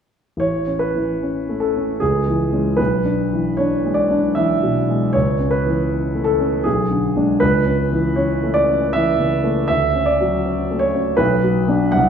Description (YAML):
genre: classical, romantic character piece for solo piano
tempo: 78 BPM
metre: 3/4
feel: rubato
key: A major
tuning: A4 = 440 Hz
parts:
  - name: warm grand piano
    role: solo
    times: 0.4-12.1 s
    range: A1 to Gb5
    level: -16 LUFS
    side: equal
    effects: none
room: wet recital hall reverb, RT60 1.5 s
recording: recorded in a church or concert hall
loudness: -16 LUFS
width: side -7 dB against mid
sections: 0.4-12.1 A section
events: none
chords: 0.4 A; 2.0 C#m; 2.8 E7/B; 5.1 A/C#; 6.7 G#dim/B; 7.4 A/C#; 9.7 Dmaj7; 11.2 Bm